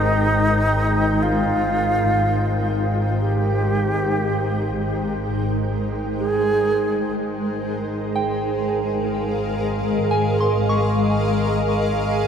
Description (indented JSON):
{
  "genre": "ambient",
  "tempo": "61 BPM",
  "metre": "4/4",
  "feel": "straight",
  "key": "Ab major",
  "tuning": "A4 = 442 Hz",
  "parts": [
    { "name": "bright reedy alto flute", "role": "melody", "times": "0.0-7.1 s", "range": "Eb4 to Ab4", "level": "-23 LUFS", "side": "right 1 dB", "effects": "ping-pong delay" },
    { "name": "granular cloud pad", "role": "sustained chords", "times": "0.0-12.3 s", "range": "Ab3 to G5", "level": "-22 LUFS", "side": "equal", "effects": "built-in reverb" },
    { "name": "dark studio double bass section", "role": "bass", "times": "0.0-12.3 s", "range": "Ab1", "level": "-24 LUFS", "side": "equal", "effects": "none" },
    { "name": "soft synth bell", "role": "arpeggios", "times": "8.2-12.3 s", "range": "G5 to Db6", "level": "-28 LUFS", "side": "equal", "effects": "chorus, ping-pong delay" }
  ],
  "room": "wet cathedral reverb, RT60 5.4 s",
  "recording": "none",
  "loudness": "-18 LUFS",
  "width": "side -7 dB against mid",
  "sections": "0.0-12.3 A section",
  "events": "none",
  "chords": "0.0 Ab6; 7.2 Db6/Ab"
}